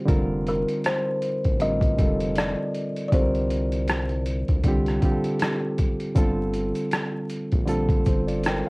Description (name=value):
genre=lo-fi hip hop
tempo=79 BPM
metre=4/4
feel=swing 58% on 16ths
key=unclear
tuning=A4 = 440 Hz
part: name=reed electric piano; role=accompaniment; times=0.0-8.7 s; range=D3 to G5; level=-26 LUFS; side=right 1 dB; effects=cassette tape, low-pass filter
part: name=round analog bass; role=bass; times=0.1-8.6 s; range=F1 to D2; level=-28 LUFS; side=equal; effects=none
part: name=boom bap sampler-style drum kit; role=drums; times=0.1-8.7 s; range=hi-hat, kick drum, rim click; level=-24 LUFS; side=equal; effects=none
part: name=kalimba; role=melody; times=0.5-5.4 s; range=Bb4 to Eb5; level=-28 LUFS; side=left 1 dB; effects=low-pass filter, tape echo, plate reverb
part: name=egg shaker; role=percussion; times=6.2-8.6 s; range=none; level=-54 LUFS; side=left 4 dB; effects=none
room=moderate studio reverb, RT60 0.6 s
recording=worn, warbling old tape, cassette tape, vinyl crackle, warbly pitch drift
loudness=-21 LUFS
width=side -27 dB against mid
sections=0.0-8.7 A section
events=none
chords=0.1 F7sus4; 3.1 C5; 6.2 Gm11